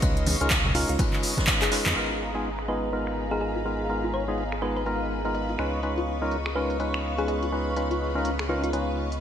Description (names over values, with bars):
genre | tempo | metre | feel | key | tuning
deep house | 124 BPM | 4/4 | swing 60% on 16ths | G# dorian | A4 = 441 Hz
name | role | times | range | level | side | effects
hollow soft pad | sustained chords | 0.0-9.2 s | B3 to C#6 | -34 LUFS | equal | chorus, sidechain pumping
percussive organ stab | stabs | 0.0-9.1 s | G#3 to B4 | -30 LUFS | equal | chorus, sidechain pumping, ping-pong delay
round analog bass | bass | 0.0-9.2 s | G#1 to E#2 | -31 LUFS | equal | sidechain pumping
deep house drum kit | drums | 0.0-9.2 s | crash cymbal, finger snaps, handclaps, hi-hat | -29 LUFS | equal | low-pass filter on hats, small room ambience, low-pass filter on snare, low-pass filter on cymbals, gated reverb
electronic kick drum | drums | 0.0-1.6 s | none | -26 LUFS | equal | small room ambience
vintage brush drum kit | drums | 0.0-1.9 s | hi-hat, ride cymbal, snare drum | -35 LUFS | left 1 dB | high-pass filter on cymbals, small room ambience, high-pass filter on hats, high-pass filter on snare, high-pass filter on room, gated reverb
granular cloud pad | texture | 0.0-9.2 s | C#4 to D#5 | -38 LUFS | equal | built-in reverb, ensemble chorus, sidechain pumping
string machine, violins | texture | 0.0-9.2 s | B3 to D#6 | -39 LUFS | equal | ensemble chorus, sidechain pumping
congas | percussion | 0.3-1.9 s | none | -35 LUFS | right 2 dB | none
thumb-piano-like synth pluck | melody | 0.7-8.7 s | E#4 to C#5 | -34 LUFS | left 1 dB | chorus, digital delay
soft round pluck | arpeggios | 2.1-8.8 s | E#4 to D#5 | -38 LUFS | left 2 dB | none
room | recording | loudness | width
moderate plate reverb, RT60 2.0 s | bright 1980s-style digital production | -24 LUFS | side -9 dB against mid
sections
0.0-2.0 A section; 2.0-9.2 B section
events
drum fill 1.6-2.0; band accent 1.8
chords
0.0 G#m69; 5.6 C#9